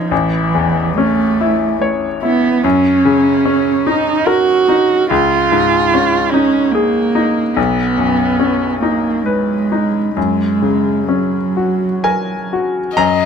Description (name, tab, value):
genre	neoclassical piano and strings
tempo	61-74 BPM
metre	3/4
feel	rubato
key	unclear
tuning	A4 = 440 Hz
part	dark cello	second line	0.0-12.5 s	E3 to F#4	-15 LUFS	right 5 dB	none
part	bright grand piano	accompaniment	0.0-13.3 s	A1 to A#5	-16 LUFS	left 6 dB	none
part	warm violin	melody	13.0-13.3 s	D#5	-16 LUFS	left 10 dB	none
room	light reverb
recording	close, detailed microphones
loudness	-12 LUFS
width	side -7 dB against mid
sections	0.0-13.0 A section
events	none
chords	0.1 A; 2.6 F#6; 5.1 C#add9; 7.6 Badd9; 10.2 F#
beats	| 0.11 0.97 1.81 | 2.64 3.46 4.28 | 5.11 5.93 6.75 | 7.57 8.40 9.26 | 10.16 11.09 12.05 | 12.98